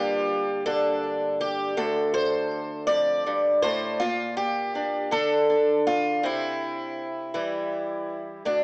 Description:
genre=folk, solo fingerstyle acoustic guitar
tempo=54 BPM (dotted quarters)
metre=6/8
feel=straight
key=unclear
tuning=A4 = 445 Hz
part: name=picked twelve-string acoustic guitar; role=solo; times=0.0-8.6 s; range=D2 to D5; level=-23 LUFS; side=equal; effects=none
room=moderate recital hall reverb, RT60 1.4 s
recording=worn, warbling old tape, cassette tape, warbly pitch drift, small speaker sound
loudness=-23 LUFS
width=side -32 dB against mid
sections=0.0-8.5 A section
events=none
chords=0.0 Gm7; 1.8 Dm7; 4.0 Bb; 6.2 C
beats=0.66 | 1.77 2.89 | 4.00 5.12 | 6.23 7.35 | 8.46

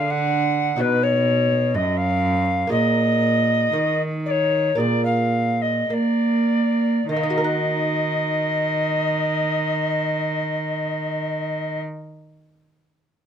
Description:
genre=classical, baroque-style sonata movement with continuo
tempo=50-65 BPM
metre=4/4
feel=rubato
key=Eb minor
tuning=A4 = 439 Hz
part: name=alto recorder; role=melody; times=0.0-11.8 s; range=B4 to Gb5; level=-22 LUFS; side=left 2 dB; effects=none
part: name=lute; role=accompaniment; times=0.0-12.2 s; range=F#2 to Gb5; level=-28 LUFS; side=right 2 dB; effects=none
part: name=rich cello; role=bass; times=0.0-11.8 s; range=F#2 to Bb3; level=-22 LUFS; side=right 2 dB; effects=none
room=light reverb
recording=close, detailed microphones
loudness=-19 LUFS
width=side -8 dB against mid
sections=0.0-7.1 A section; 7.1-11.8 B section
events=slowing down 0.0-7.1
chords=0.0 Bb7; 0.8 B; 2.7 Bb7sus4; 4.8 Bb7; 7.1 Ebm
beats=0.79 1.74 | 2.71 3.73 4.78 5.90 | 7.08 8.27 9.44 10.63

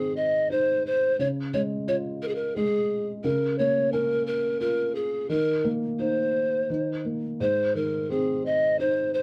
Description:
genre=children's music, lullaby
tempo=86 BPM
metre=3/4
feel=rubato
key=Ab major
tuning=A4 = 439 Hz
part: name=breathy mellow polished pan flute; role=melody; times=0.0-9.2 s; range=Ab4 to Eb5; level=-26 LUFS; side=equal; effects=none
part: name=felt-muted upright piano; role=accompaniment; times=0.0-9.2 s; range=Ab2 to F4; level=-32 LUFS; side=equal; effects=none
room=moderate studio reverb, RT60 0.6 s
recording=none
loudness=-26 LUFS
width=mono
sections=0.0-9.2 A section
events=none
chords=0.0 Ab; 1.2 Db; 3.2 Bbm/Db; 5.3 Eb5; 7.4 Ab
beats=0.50 | 1.20 1.88 2.56 | 3.25 3.92 4.61 | 5.29 5.99 6.69 | 7.40 8.10 8.79

